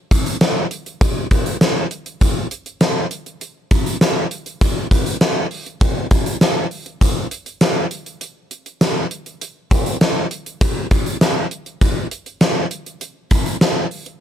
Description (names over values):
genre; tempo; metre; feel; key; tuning
pop; 100 BPM; 4/4; straight; none; none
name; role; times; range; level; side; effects
gated 80s drum kit; drums; 0.1-14.2 s; hi-hat, kick drum, snare drum; -16 LUFS; equal; none
room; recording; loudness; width
little or no reverb; none; -16 LUFS; side -10 dB against mid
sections
0.0-14.2 A section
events
none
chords
none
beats
0.41 | 1.01 1.61 2.21 2.81 | 3.41 4.01 4.61 5.21 | 5.81 6.41 7.01 7.61 | 8.21 8.81 9.41 10.01 | 10.61 11.21 11.81 12.41 | 13.01 13.61